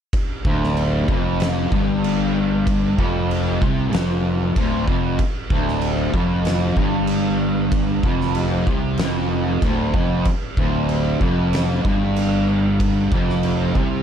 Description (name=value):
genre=stoner and doom metal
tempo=95 BPM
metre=4/4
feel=straight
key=D minor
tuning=A4 = 444 Hz
part: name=oversized low-tuned drum kit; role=drums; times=0.1-13.9 s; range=crash cymbal, kick drum, snare drum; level=-23 LUFS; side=equal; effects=none
part: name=fuzz fingered electric bass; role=bass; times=0.4-14.0 s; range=D1 to C2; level=-24 LUFS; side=equal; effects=overdrive, tube saturation
part: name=fuzz guitar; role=riff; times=0.5-14.0 s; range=D2 to C3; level=-20 LUFS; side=equal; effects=distortion
room=studio reverb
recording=dark, warm production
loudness=-17 LUFS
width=side -8 dB against mid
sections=0.1-14.0 A section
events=none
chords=0.1 Dm